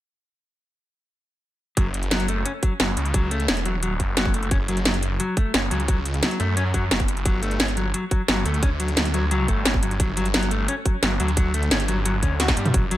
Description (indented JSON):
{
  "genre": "dark technical drum and bass",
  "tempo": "175 BPM",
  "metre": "4/4",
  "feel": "straight",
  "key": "F# phrygian",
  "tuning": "A4 = 441 Hz",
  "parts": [
    { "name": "clean electric guitar", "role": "arpeggios", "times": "1.8-13.0 s", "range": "F#3 to F#4", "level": "-27 LUFS", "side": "left 2 dB", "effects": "sidechain pumping, low-pass filter, digital delay" },
    { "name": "snarling distorted saw bass", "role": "bass", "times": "1.8-13.0 s", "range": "E1 to G2", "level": "-24 LUFS", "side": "equal", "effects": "distortion, tube saturation, sidechain pumping" },
    { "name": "drum and bass drum kit", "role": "drums", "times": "1.8-13.0 s", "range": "hi-hat, snare drum, toms", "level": "-23 LUFS", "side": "equal", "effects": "none" },
    { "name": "electronic kick drum", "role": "drums", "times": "1.8-12.8 s", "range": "none", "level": "-22 LUFS", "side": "equal", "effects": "none" }
  ],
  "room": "digital ambience",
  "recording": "none",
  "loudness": "-20 LUFS",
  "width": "side -14 dB against mid",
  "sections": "1.8-13.0 A section",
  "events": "drum fill 12.4-12.7",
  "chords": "1.8 F#m7; 7.3 Gsus2"
}